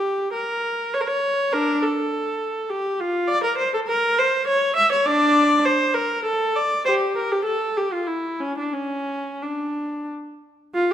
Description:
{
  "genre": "classical, baroque-style suite movement for unaccompanied viola",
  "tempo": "88-104 BPM",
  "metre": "3/4",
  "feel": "rubato",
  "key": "D minor",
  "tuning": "A4 = 441 Hz",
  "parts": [
    { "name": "rich viola", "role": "solo", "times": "0.0-10.9 s", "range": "C#4 to E5", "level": "-20 LUFS", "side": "equal", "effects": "none" }
  ],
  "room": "wet recital hall reverb, RT60 1.4 s",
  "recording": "none",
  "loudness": "-20 LUFS",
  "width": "side -10 dB against mid",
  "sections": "0.0-10.7 A section",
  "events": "none",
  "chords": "none",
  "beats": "0.33 0.93 | 1.52 2.10 2.69 | 3.27 3.86 4.45 | 5.05 5.64 6.24 | 6.86 7.46 8.08 | 8.75 9.43 10.09 | 10.74"
}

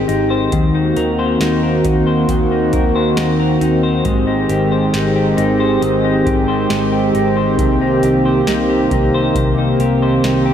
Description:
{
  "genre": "dream pop",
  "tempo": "68 BPM",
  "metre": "4/4",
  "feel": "straight",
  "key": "Ab major",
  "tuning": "A4 = 441 Hz",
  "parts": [
    { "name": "warm analog pad", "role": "sustained chords", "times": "0.0-10.5 s", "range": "Eb3 to G4", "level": "-15 LUFS", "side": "right 1 dB", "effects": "chorus" },
    { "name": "clean electric guitar", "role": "arpeggios", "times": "0.0-10.5 s", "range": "C3 to C5", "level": "-19 LUFS", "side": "left 4 dB", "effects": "analog chorus, digital delay" },
    { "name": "vintage muted picked electric bass", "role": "bass", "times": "0.0-10.5 s", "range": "Ab1 to Eb2", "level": "-23 LUFS", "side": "equal", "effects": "none" },
    { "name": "booming analog drum machine", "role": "drums", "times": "0.1-10.4 s", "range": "hi-hat, kick drum, snare drum", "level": "-22 LUFS", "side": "right 1 dB", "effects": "none" }
  ],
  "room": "moderate lush hall reverb, RT60 2.7 s",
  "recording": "none",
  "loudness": "-13 LUFS",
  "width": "side -9 dB against mid",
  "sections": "0.0-10.5 A section",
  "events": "none",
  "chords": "0.0 Abmaj7; 0.5 Ebm6; 4.1 Abmaj7; 7.6 Cm7",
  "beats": "| 0.53 1.41 2.29 3.18 | 4.06 4.94 5.82 6.71 | 7.59 8.47 9.35 10.24"
}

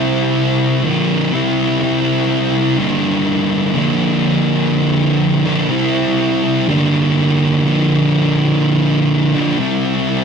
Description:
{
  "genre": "rock",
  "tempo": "123 BPM",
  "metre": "4/4",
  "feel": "straight",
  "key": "unclear",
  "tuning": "A4 = 439 Hz",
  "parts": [
    { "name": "thick fuzz guitar", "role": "solo", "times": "0.0-10.2 s", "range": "G2 to F4", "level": "-13 LUFS", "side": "equal", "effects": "distortion" }
  ],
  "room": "moderate studio reverb, RT60 0.6 s",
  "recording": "rough rehearsal-room recording, tube saturation",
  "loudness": "-13 LUFS",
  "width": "side -6 dB against mid",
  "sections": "0.0-1.8 A section; 1.8-10.2 B section",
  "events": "none",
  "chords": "0.0 C; 0.8 Bb; 1.3 C; 2.8 Gm; 3.8 Bb; 5.7 C; 6.7 Gm; 7.6 Bb; 9.6 C",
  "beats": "0.37 0.85 1.33 | 1.82 2.30 2.79 3.27 | 3.76 4.25 4.73 5.22 | 5.70 6.19 6.68 7.16 | 7.65 8.13 8.62 9.11 | 9.59 10.08"
}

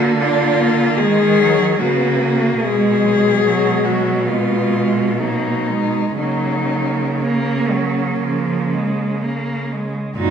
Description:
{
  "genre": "classical, lyrical piece for cello ensemble",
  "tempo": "57-76 BPM",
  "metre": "4/4",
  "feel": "rubato",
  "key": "unclear",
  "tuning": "A4 = 440 Hz",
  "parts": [
    { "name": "dark cello", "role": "melody", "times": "0.0-10.3 s", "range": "C#4 to G#4", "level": "-20 LUFS", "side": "left 7 dB", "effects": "none" },
    { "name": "warm cello", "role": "second line", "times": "0.0-10.3 s", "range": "F#3 to D#4", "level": "-22 LUFS", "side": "right 8 dB", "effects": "none" },
    { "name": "rich cello", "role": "accompaniment", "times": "0.0-10.3 s", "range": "A#2 to A#3", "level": "-21 LUFS", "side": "equal", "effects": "none" },
    { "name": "rich cello", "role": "bass", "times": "0.0-10.3 s", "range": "F#2 to D#3", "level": "-21 LUFS", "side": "right 3 dB", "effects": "none" }
  ],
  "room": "moderate recital hall reverb, RT60 1.7 s",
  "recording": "minimal, uncompressed stereo recording",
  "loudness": "-15 LUFS",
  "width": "side -7 dB against mid",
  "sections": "0.0-10.2 A section",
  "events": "none",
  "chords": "0.0 A#/D; 1.0 D#m; 2.6 G#m7/B; 6.2 F#/C#; 8.2 C#",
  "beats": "0.20 1.00 1.83 | 2.64 3.45 4.30 5.20 | 6.19 7.22 8.23 9.23 | 10.17"
}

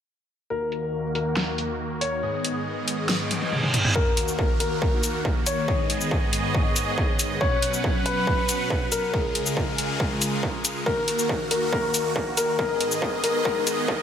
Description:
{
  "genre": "heavy wobble dubstep",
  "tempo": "139 BPM",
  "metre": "4/4",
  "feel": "half-time",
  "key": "Eb minor",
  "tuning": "A4 = 440 Hz",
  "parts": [
    { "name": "dark concert grand piano", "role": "melody", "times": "0.5-14.0 s", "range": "Bb4 to Db5", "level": "-27 LUFS", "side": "left 3 dB", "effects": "tape echo" },
    { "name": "supersaw chords", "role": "sustained chords", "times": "0.5-14.0 s", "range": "Db2 to F#5", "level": "-27 LUFS", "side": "right 1 dB", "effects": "phaser, sidechain pumping, low-pass filter" },
    { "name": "dubstep drum kit", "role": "drums", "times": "0.7-13.8 s", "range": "hi-hat, shaker, snare drum, toms", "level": "-26 LUFS", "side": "left 1 dB", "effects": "low-pass filter on hats, low-pass filter on snare, low-pass filter on toms, low-pass filter on perc" },
    { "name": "reverse cymbal and riser", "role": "sound effects", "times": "3.3-4.0, 12.7-14.0 s", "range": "none", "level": "-30 LUFS", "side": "right 2 dB", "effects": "none" },
    { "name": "electronic kick drum", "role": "drums", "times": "4.0-14.0 s", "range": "none", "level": "-26 LUFS", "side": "equal", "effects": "distortion" }
  ],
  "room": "light reverb, digital ambience",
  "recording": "high-pass filter",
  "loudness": "-22 LUFS",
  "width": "side -8 dB against mid",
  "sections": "0.5-4.0 A section; 4.0-14.0 B section",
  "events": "filter sweep on drum 0.5-4.0; filter sweep on supersaw synth 0.5-4.0; reverse cymbal 3.3-4.0; drum fill 3.3-4.0, 10.9-14.0; build-up 4.0-14.0; riser 12.7-14.0",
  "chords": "0.5 Ebm; 2.2 Abm; 4.0 Ebm; 5.7 Abm; 7.4 Bsus2; 9.1 Db; 10.9 Ebm; 12.6 Abm",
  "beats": "| 0.50 0.93 1.37 1.80 | 2.23 2.66 3.09 3.52 | 3.96 4.39 4.82 5.25 | 5.68 6.11 6.54 6.98 | 7.41 7.84 8.27 8.70 | 9.13 9.57 10.00 10.43 | 10.86 11.29 11.72 12.16 | 12.59 13.02 13.45 13.88"
}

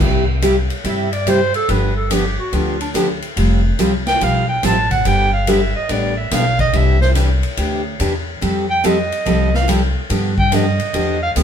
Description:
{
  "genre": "country, western swing",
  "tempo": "143 BPM",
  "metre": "4/4",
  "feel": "swing 66% on 8ths",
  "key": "C major",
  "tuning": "A4 = 439 Hz",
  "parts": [
    { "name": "picked steel-string acoustic guitar", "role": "accompaniment", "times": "0.0-11.4 s", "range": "C3 to C5", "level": "-19 LUFS", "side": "equal", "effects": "none" },
    { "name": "upright bass", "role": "bass", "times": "0.0-11.4 s", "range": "F1 to G2", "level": "-19 LUFS", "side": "equal", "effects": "none" },
    { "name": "swinging big-band drum kit", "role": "drums", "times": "0.0-11.4 s", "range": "crash cymbal, hi-hat, kick drum, ride cymbal, snare drum", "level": "-23 LUFS", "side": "left 1 dB", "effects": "none" },
    { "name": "breathy clarinet", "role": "second line", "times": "0.9-11.3 s", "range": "D4 to A5", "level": "-19 LUFS", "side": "right 2 dB", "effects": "none" }
  ],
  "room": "moderate studio reverb, RT60 0.7 s",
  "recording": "band playing live in one room",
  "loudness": "-14 LUFS",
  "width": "side -8 dB against mid",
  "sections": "0.0-11.4 A section",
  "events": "clarinet solo 0.0-11.4",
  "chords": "0.0 C; 1.7 G7; 3.4 Fsus2; 5.1 G; 6.7 Cadd9; 8.4 Fadd9; 10.1 G7",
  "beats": "| 0.00 0.42 0.84 1.27 | 1.69 2.11 2.53 2.95 | 3.37 3.79 4.21 4.64 | 5.06 5.48 5.90 6.32 | 6.74 7.16 7.58 8.00 | 8.42 8.84 9.26 9.68 | 10.10 10.52 10.94 11.36"
}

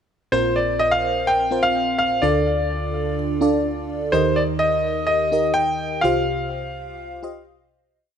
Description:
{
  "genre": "pop",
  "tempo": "126 BPM",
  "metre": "4/4",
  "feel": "straight",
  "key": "unclear",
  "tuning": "A4 = 440 Hz",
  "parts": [
    { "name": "clear concert grand piano", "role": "melody", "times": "0.3-7.4 s", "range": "C5 to G5", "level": "-21 LUFS", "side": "equal", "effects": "tape echo" },
    { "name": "FM electric piano with soft pad layer", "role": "accompaniment", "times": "0.3-8.0 s", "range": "Bb1 to F5", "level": "-22 LUFS", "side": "equal", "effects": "chorus, phaser" }
  ],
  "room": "moderate lush hall reverb, RT60 2.3 s",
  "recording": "none",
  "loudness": "-18 LUFS",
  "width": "side -8 dB against mid",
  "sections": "0.3-7.9 pre-chorus",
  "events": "fade-out 6.0-7.9",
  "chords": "0.3 Bbsus2; 2.2 Dm; 4.1 Eb; 6.0 Csus4",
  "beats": "| 0.32 0.80 1.28 1.75 | 2.23 2.70 3.18 3.66 | 4.13 4.61 5.08 5.56 | 6.04 6.51 6.99 7.47"
}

